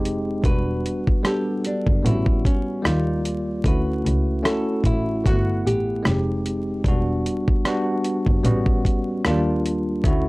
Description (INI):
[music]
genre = lo-fi hip hop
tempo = 75 BPM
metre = 4/4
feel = swing 57% on 16ths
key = E dorian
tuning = A4 = 440 Hz
[part]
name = bell-like tine electric piano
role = accompaniment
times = 0.0-10.3 s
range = F#3 to F#5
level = -24 LUFS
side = equal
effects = medium stereo tremolo, cassette tape, low-pass filter
[part]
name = warm double bass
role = bass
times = 0.0-10.3 s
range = E1 to D#2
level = -24 LUFS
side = equal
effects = none
[part]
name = dusty soul sampler-style drum kit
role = drums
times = 0.1-10.3 s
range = hi-hat, kick drum, rim click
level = -21 LUFS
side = equal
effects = none
[part]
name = nylon-string guitar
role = melody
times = 0.5-6.2 s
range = C#4 to B4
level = -28 LUFS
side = equal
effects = low-pass filter
[sound]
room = little or no reverb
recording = dry, gritty hardware recording, transformer saturation, vinyl crackle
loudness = -19 LUFS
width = side -23 dB against mid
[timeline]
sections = 0.0-10.3 A section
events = none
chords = 0.4 Em9; 2.0 A13; 2.8 D#maj9; 3.6 Dmaj9; 5.2 Gmaj13; 6.0 Fm9; 6.8 Em9; 8.4 A13; 9.2 D#maj9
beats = | 0.44 1.24 2.04 2.84 | 3.64 4.44 5.24 6.04 | 6.84 7.64 8.44 9.24 | 10.04